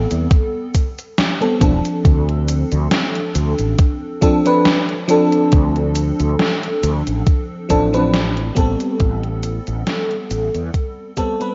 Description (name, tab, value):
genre	vaporwave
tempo	69 BPM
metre	4/4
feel	swing 55% on 16ths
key	unclear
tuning	A4 = 440 Hz
part	FM electric piano with soft pad layer	accompaniment	0.0-11.5 s	F3 to B4	-21 LUFS	equal	lush chorus, cassette tape, tape echo
part	fretless electric bass	bass	0.0-10.7 s	E1 to E2	-22 LUFS	equal	analog chorus
part	gated 80s digital drum machine	drums	0.1-11.5 s	cabasa, hi-hat, snare drum	-23 LUFS	equal	gated reverb, gated reverb snare, overdrive
part	electronic kick drum	drums	0.3-11.4 s	none	-18 LUFS	equal	overdrive
room	light reverb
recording	worn, warbling old tape, cassette tape, warbly pitch drift, nothing above 7.6 kHz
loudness	-17 LUFS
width	mono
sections	0.0-11.5 A section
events	fade-out 6.7-11.5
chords	0.0 Am9; 2.0 Dm7; 8.6 Am9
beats	0.31 1.18 | 2.05 2.92 3.79 4.66 | 5.52 6.39 7.26 8.13 | 9.00 9.87 10.74